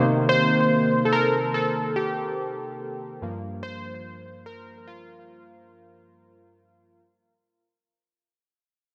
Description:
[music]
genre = R&B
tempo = 72 BPM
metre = 4/4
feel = straight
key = unclear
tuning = A4 = 435 Hz
[part]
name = warm analog keys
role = solo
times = 0.0-7.0 s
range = G2 to C5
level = -24 LUFS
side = equal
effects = chorus, analog delay
[sound]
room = moderate spring reverb, RT60 1.1 s, digital ambience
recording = echo-heavy mix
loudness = -24 LUFS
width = mono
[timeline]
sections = 0.0-7.0 A section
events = fade-out 0.0-7.0; synth keys solo 0.0-7.0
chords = 0.0 Cm7; 3.2 Gm7

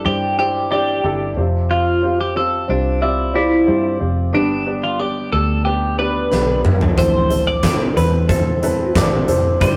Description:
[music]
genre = piano-driven pop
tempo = 91 BPM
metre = 4/4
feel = straight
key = A minor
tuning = A4 = 440 Hz
[part]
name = twelve-string electric guitar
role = melody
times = 0.0-9.8 s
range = D4 to D5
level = -22 LUFS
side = equal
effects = phaser
[part]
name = warm grand piano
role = accompaniment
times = 0.0-9.8 s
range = G2 to D5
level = -23 LUFS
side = equal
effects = none
[part]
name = vintage muted fingered electric bass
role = bass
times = 0.1-9.8 s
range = F1 to G2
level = -24 LUFS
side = equal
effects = none
[part]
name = huge arena drum kit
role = drums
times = 6.3-9.8 s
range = handclaps, hi-hat, kick drum, snare drum, toms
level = -20 LUFS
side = equal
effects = none
[sound]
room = moderate stone room reverb, RT60 1.1 s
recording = rough rehearsal-room recording, warm saturation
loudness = -17 LUFS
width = mono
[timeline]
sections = 0.0-9.8 A section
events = drum fill 6.3-7.0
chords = 0.0 Cadd9/G; 1.4 Fsus2; 4.3 G; 7.0 Am

